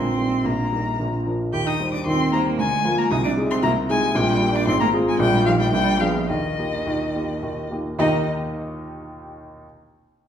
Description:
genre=quick classical-period movement for piano trio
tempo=104-116 BPM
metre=3/4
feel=rubato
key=Eb major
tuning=A4 = 440 Hz
part: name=rich violin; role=melody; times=0.0-8.3 s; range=Eb5 to G6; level=-25 LUFS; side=left 5 dB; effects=none
part: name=rich cello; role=second line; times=0.0-8.3 s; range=Eb3 to G4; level=-25 LUFS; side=right 4 dB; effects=none
part: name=dark baby grand piano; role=accompaniment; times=0.0-9.7 s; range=Ab1 to Eb5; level=-22 LUFS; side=equal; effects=none
room=wet recital hall reverb, RT60 1.4 s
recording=heard from further back in the room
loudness=-19 LUFS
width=side -9 dB against mid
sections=0.0-8.0 A section; 8.0-9.6 B section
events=none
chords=0.0 Eb/Bb; 1.0 Bb; 1.5 Cm/Eb; 2.6 Bb/D; 3.1 Ab/C; 4.2 Gm/Bb; 4.7 Fm/Ab; 5.2 Eb/Bb; 5.7 Bb7b9; 6.3 Eb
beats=0.44 0.99 | 1.53 2.07 2.59 | 3.11 3.64 4.16 | 4.68 5.20 5.73 | 6.29 6.86 7.42 | 7.99 8.54 9.09

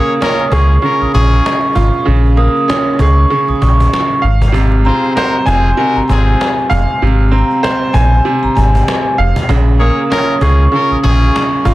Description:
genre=hip hop, boom-bap hip-hop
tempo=97 BPM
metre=4/4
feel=swing 58% on 16ths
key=Bb minor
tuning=A4 = 440 Hz
part: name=vibraphone with soft mallets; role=melody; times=0.0-11.7 s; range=Ab5 to Eb6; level=-17 LUFS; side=equal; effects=high-pass filter, low-pass filter
part: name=clear upright piano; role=accompaniment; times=0.0-11.7 s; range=C3 to Ab5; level=-16 LUFS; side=right 2 dB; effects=cassette tape, high-pass filter, low-pass filter
part: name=clear trumpet section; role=stabs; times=0.0-11.5 s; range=C4 to Db5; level=-20 LUFS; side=left 3 dB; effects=high-pass filter, low-pass filter, tape echo
part: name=cajon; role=drums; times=0.1-11.7 s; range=none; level=-20 LUFS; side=equal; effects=none
part: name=sub bass with octave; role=bass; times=0.5-11.7 s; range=F1 to Db2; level=-11 LUFS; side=equal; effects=none
room=light reverb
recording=dense, heavily limited modern master, vinyl crackle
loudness=-9 LUFS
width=side -17 dB against mid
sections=0.0-11.7 A section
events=none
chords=0.0 Bbm7; 4.2 Fm; 9.5 Bbm7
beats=0.21 0.83 1.45 | 2.07 2.68 3.30 3.92 | 4.54 5.16 5.78 6.40 | 7.01 7.63 8.25 8.87 | 9.49 10.11 10.73 11.34

